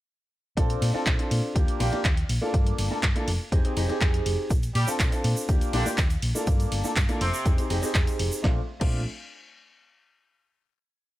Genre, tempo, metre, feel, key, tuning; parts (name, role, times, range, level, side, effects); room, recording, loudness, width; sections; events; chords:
filtered disco house; 122 BPM; 4/4; straight; Bb major; A4 = 440 Hz
warm grand piano; accompaniment; 0.6-9.0 s; A3 to A4; -30 LUFS; equal; phaser, sidechain pumping
hollow-body short-scale fingered electric bass; bass; 0.6-9.0 s; F1 to Bb2; -27 LUFS; equal; sidechain pumping
electronic kick drum; drums; 0.6-8.9 s; -24 LUFS; equal
punchy analog drum machine; drums; 0.6-8.9 s; crash cymbal, handclaps, hi-hat, ride cymbal, snare drum; -32 LUFS; equal; sidechain pumping on hats, sidechain pumping on cymbals
egg shaker; percussion; 4.5-8.4 s; -38 LUFS; right 4 dB; sidechain pumping on perc
brilliant horn section; melody; 4.8-7.6 s; C3 to G4; -32 LUFS; right 1 dB; sidechain pumping, tape echo
small room ambience; -22 LUFS; side -16 dB against mid
0.6-8.4 drop; 8.4-10.4 final chord
drop 0.6-8.4
0.6 Bbmaj9; 1.6 Ebmaj7; 2.5 Gm9; 3.3 Fm9; 4.5 Bbmaj9; 5.5 Ebmaj7; 6.5 Gm9; 7.2 Fm9; 8.4 Bbmaj9